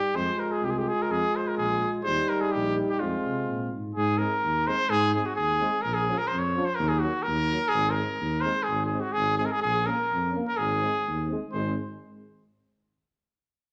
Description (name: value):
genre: balkan folk, Balkan brass band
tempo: 127 BPM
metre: 2/4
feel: swing 54% on 16ths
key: F minor, Ab mixolydian from 4.0 s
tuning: A4 = 444 Hz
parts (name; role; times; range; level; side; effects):
- warm trumpet; melody; 0.0-11.7 s; F4 to Db5; -29 LUFS; equal; none
- mellow euphonium; accompaniment; 0.0-11.8 s; F3 to Bb3; -36 LUFS; equal; none
- warm euphonium; accompaniment; 0.1-11.7 s; Bb3 to F4; -38 LUFS; equal; none
- dark tuba; bass; 0.1-11.8 s; Ab1 to C3; -33 LUFS; equal; none
room: wet large studio reverb, RT60 1.3 s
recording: none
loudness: -27 LUFS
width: mono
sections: 0.0-4.0 A section; 4.0-11.5 B section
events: none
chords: 0.1 Fm; 2.0 Eb; 3.0 Fm; 4.0 Ab; 5.9 Bbm; 6.8 Ebm; 7.7 Ab; 9.6 Bbm; 10.6 Ab